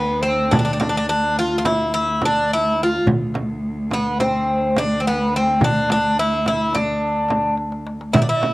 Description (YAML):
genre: Turkish makam ensemble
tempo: 213 BPM (eighths)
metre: 9/8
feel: straight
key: D makam huseyni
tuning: A4 = 443 Hz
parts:
  - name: Greek bouzouki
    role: melody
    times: 0.0-8.5 s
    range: B3-30c to F4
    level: -19 LUFS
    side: equal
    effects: cassette tape
  - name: rich cello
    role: drone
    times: 0.0-8.2 s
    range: D2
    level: -24 LUFS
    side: equal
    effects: stereo widening, cassette tape
  - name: darbuka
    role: percussion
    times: 0.5-8.5 s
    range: none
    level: -28 LUFS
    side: left 2 dB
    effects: none
  - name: frame drum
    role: percussion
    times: 0.5-8.5 s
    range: none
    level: -21 LUFS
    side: right 1 dB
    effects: none
  - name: breathy bright ney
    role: second line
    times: 8.1-8.5 s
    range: D5 to E5-29c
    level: -29 LUFS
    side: left 1 dB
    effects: none
  - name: mellow bass bansuri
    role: second line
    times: 8.1-8.5 s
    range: none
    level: barely audible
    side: none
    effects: none
room: light reverb, small room ambience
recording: home recording on cassette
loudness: -17 LUFS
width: side -19 dB against mid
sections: 0.0-8.1 A section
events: drum fill 7.6-8.1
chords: none